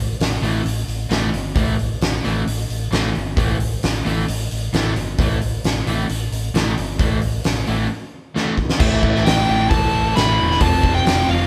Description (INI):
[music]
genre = hard rock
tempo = 132 BPM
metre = 4/4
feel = straight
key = A minor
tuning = A4 = 438 Hz
[part]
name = fingered electric bass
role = bass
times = 0.0-11.5 s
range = E1 to A1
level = -25 LUFS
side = equal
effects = none
[part]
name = huge arena drum kit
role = drums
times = 0.2-11.2 s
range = crash cymbal, hi-hat, kick drum, snare drum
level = -23 LUFS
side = equal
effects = none
[part]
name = distorted electric guitar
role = riff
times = 0.4-11.5 s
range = F2 to A3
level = -29 LUFS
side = equal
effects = distortion
[part]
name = overdriven semi-hollow guitar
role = riff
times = 0.4-11.5 s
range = F2 to A3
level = -27 LUFS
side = equal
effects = none
[part]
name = high-gain lead guitar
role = melody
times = 8.8-11.5 s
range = E5 to B5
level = -22 LUFS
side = equal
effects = distortion
[part]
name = scooped high-gain guitar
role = riff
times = 8.8-11.5 s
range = A2 to F4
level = -30 LUFS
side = equal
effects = none
[sound]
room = moderate studio reverb, RT60 0.8 s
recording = band playing live in one room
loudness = -19 LUFS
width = mono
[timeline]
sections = 0.0-8.8 A section; 8.8-11.5 B section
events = break 7.9-8.8; drum fill 8.4-8.8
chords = 0.0 A5; 8.8 Am; 10.6 F